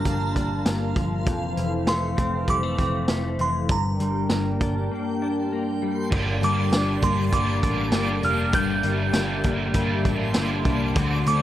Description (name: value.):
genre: dream pop.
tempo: 99 BPM.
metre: 4/4.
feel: straight.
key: G dorian.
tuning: A4 = 435 Hz.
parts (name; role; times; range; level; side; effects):
glassy synth bell; melody; 0.0-11.4 s; Bb5 to G6; -28 LUFS; right 2 dB; chorus, tremolo, analog delay.
warm analog pad; sustained chords; 0.0-11.4 s; E3 to A5; -32 LUFS; right 2 dB; chorus.
clean electric guitar; arpeggios; 0.0-11.4 s; F2 to D4; -27 LUFS; left 4 dB; ensemble chorus, analog delay.
vintage muted picked electric bass; bass; 0.0-11.4 s; F1 to D2; -27 LUFS; right 1 dB; none.
vintage drum kit; drums; 0.1-11.4 s; crash cymbal, hi-hat, kick drum, snare drum, tambourine; -26 LUFS; equal; none.
cranked stack guitar; accompaniment; 6.1-11.4 s; G2 to F#4; -28 LUFS; right 3 dB; overdrive, harmonic tremolo, ensemble chorus.
room: light reverb.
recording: dry, gritty hardware recording.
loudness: -21 LUFS.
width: side -12 dB against mid.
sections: 0.0-6.1 A section; 6.1-11.4 B section.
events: break 4.9-6.1.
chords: 0.0 Gm7; 1.3 Fmaj7; 3.7 Gm.